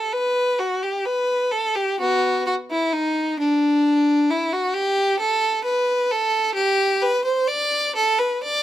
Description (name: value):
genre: classical, baroque-style suite movement for unaccompanied violin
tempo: 65 BPM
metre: 4/4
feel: rubato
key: unclear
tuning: A4 = 440 Hz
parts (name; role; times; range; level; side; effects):
- clear violin; solo; 0.0-8.6 s; B3 to D5; -19 LUFS; equal; none
room: light reverb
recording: none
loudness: -18 LUFS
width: side -12 dB against mid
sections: 0.0-8.6 A section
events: none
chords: none